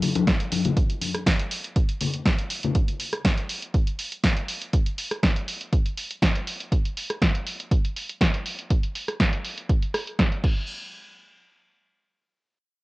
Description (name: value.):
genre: house.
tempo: 121 BPM.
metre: 4/4.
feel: straight.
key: none.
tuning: none.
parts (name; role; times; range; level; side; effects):
punchy analog drum machine; drums; 0.0-10.5 s; crash cymbal, hi-hat, rim click, snare drum; -26 LUFS; equal; sidechain pumping on hats, low-pass filter on hats, cassette tape, low-pass filter on snare, sidechain pumping on cymbals, low-pass filter on cymbals.
congas and tambourine; percussion; 0.0-2.7 s; none; -25 LUFS; left 4 dB; sidechain pumping on perc, low-pass filter on perc.
electronic kick drum; drums; 0.3-10.5 s; none; -22 LUFS; equal; cassette tape.
room: little or no reverb.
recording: home recording on cassette.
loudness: -22 LUFS.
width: side -21 dB against mid.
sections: 0.0-10.7 A section; 10.7-12.7 B section.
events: none.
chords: none.